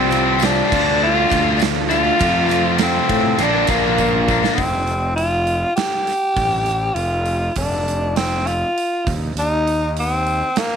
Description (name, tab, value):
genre	classic rock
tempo	101 BPM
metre	4/4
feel	straight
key	unclear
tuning	A4 = 439 Hz
part	growling tenor saxophone	melody	0.0-10.8 s	Bb3 to G4	-19 LUFS	equal	none
part	picked twelve-string acoustic guitar	accompaniment	0.0-4.6 s	Bb2 to Bb4	-26 LUFS	left 12 dB	none
part	string machine, full ensemble	sustained chords	0.0-4.6 s	G3 to F4	-29 LUFS	equal	none
part	cranked stack guitar	riff	0.0-4.6 s	F2 to F4	-20 LUFS	left 15 dB	overdrive
part	sludgy distorted guitar	riff	0.0-4.6 s	F2 to F4	-22 LUFS	right 13 dB	overdrive
part	fuzz fingered electric bass	bass	0.0-10.4 s	F1 to A2	-23 LUFS	equal	overdrive
part	gated 80s drum kit	drums	0.1-10.7 s	crash cymbal, hi-hat, kick drum, ride cymbal, snare drum	-25 LUFS	right 5 dB	none
part	tambourine	percussion	0.1-4.4 s	none	-36 LUFS	right 16 dB	none
room	light reverb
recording	1960s-style stereo with parts hard left and right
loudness	-16 LUFS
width	side -7 dB against mid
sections	0.0-4.6 A section; 4.6-10.8 B section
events	drum fill 4.0-4.6; half time 4.6-10.8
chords	0.0 Csus4; 0.7 Dm; 2.2 F; 3.4 Bb; 4.6 N.C.